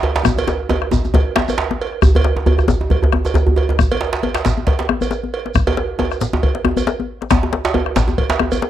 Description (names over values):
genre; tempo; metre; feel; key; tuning
west african traditional, West African drum ensemble; 136 BPM; 4/4; swing 56% on 16ths; none; none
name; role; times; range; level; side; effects
cowbell; percussion; 0.0-8.6 s; none; -24 LUFS; right 6 dB; none
djembe; percussion; 0.0-8.5 s; none; -18 LUFS; right 2 dB; none
bombo; percussion; 0.2-8.5 s; none; -18 LUFS; left 2 dB; none
shekere; percussion; 0.2-8.6 s; none; -26 LUFS; right 3 dB; none
djembe; percussion; 0.3-8.7 s; none; -20 LUFS; left 3 dB; none
room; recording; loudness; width
light reverb; dry, close 1970s-style studio recording; -15 LUFS; side -11 dB against mid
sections
0.0-2.0 A section; 2.0-8.7 B section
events
drum fill 0.3-2.0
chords
none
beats
| 0.25 0.69 1.14 1.58 | 2.02 2.47 2.91 3.35 | 3.79 4.23 4.67 5.11 | 5.55 5.99 6.43 6.87 | 7.31 7.75 8.18 8.62